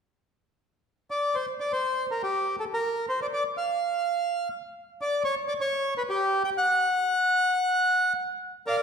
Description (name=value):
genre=tango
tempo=124 BPM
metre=4/4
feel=rubato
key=unclear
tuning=A4 = 435 Hz
part: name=bandoneon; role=solo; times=1.1-8.8 s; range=G4 to G5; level=-24 LUFS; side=equal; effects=none
room=wet recital hall reverb, RT60 1.6 s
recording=recorded in a church or concert hall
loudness=-24 LUFS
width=side -6 dB against mid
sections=0.9-8.7 A section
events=none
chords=none